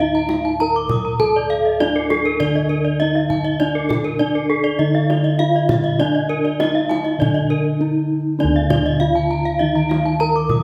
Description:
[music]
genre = Balinese gamelan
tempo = 100 BPM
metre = 4/4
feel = straight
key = D pelog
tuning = A4 = 444 Hz
[part]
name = gamelan-type bronze metallophone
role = melody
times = 0.0-10.6 s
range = D4 to Bb4-40c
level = -23 LUFS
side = equal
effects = none
[part]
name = gamelan-type bronze metallophone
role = arpeggios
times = 0.0-10.3 s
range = A4-45c to Bb5-40c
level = -24 LUFS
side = equal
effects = none
[part]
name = gamelan-type bossed gongs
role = bass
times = 0.0-10.6 s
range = D2 to A4-45c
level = -25 LUFS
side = equal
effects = none
[part]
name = gamelan-type bronze metallophone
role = arpeggios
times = 0.1-10.6 s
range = A4-45c to Eb6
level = -28 LUFS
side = equal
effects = none
[part]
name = kendang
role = percussion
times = 0.2-10.6 s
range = none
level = -27 LUFS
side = equal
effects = none
[part]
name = gamelan-type bronze metallophone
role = accompaniment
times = 8.4-10.6 s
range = D3 to Eb3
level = -24 LUFS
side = equal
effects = none
[sound]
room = wet recital hall reverb, RT60 1.6 s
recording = recorded in a church or concert hall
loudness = -18 LUFS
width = mono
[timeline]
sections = 0.0-10.6 A section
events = none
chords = none

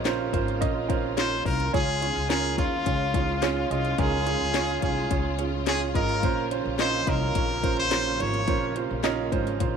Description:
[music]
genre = piano-driven pop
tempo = 107 BPM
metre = 4/4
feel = straight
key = unclear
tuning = A4 = 440 Hz
[part]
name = warm upright piano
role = accompaniment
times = 0.0-9.8 s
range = Bb2 to Eb5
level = -28 LUFS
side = right 11 dB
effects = none
[part]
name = warm studio string section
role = sustained chords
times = 0.0-9.8 s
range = C3 to F4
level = -35 LUFS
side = left 4 dB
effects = none
[part]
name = upright bass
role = bass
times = 0.0-9.8 s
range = Ab1 to Eb2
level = -31 LUFS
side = left 2 dB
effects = none
[part]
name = house drum kit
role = drums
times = 0.1-9.7 s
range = hi-hat, kick drum, snare drum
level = -29 LUFS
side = left 5 dB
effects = none
[part]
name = brilliant trumpet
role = melody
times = 1.2-8.8 s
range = F4 to Db5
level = -28 LUFS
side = left 2 dB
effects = none
[sound]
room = light reverb, small room ambience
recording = 1960s-style stereo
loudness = -23 LUFS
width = side -7 dB against mid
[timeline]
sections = 0.0-9.8 A section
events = none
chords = 0.0 Bbmadd9

